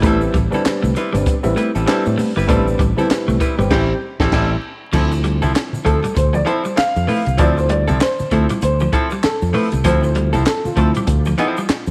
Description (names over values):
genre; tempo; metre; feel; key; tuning
funk; 98 BPM; 4/4; swing 60% on 16ths; D dorian; A4 = 439 Hz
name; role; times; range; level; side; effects
clean electric guitar; riff; 0.0-11.7 s; F3 to A3; -26 LUFS; equal; subtle chorus
dark upright piano; stabs; 0.0-11.9 s; F3 to F5; -23 LUFS; equal; none
fingered electric bass; bass; 0.0-11.9 s; G1 to A2; -21 LUFS; equal; none
compact cocktail drum kit; drums; 0.0-11.9 s; crash cymbal, handclaps, hi-hat, kick drum, snare drum; -23 LUFS; equal; none
tube shaker; percussion; 0.0-11.9 s; none; -45 LUFS; equal; none
archtop guitar, miked and amplified; accompaniment; 0.1-11.7 s; F3 to B4; -25 LUFS; equal; none
congas; percussion; 0.3-11.3 s; none; -32 LUFS; equal; none
room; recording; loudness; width
light reverb, small room ambience; vinyl crackle; -17 LUFS; mono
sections
0.0-4.9 A section; 4.9-11.9 B section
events
band accent 3.7-4.9; upright piano solo 4.9-11.9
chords
0.0 Am7; 4.9 Dm9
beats
| 0.03 0.64 1.26 1.87 | 2.48 3.10 3.71 4.33 | 4.94 5.55 6.17 6.78 | 7.39 8.01 8.62 9.24 | 9.85 10.47 11.08 11.70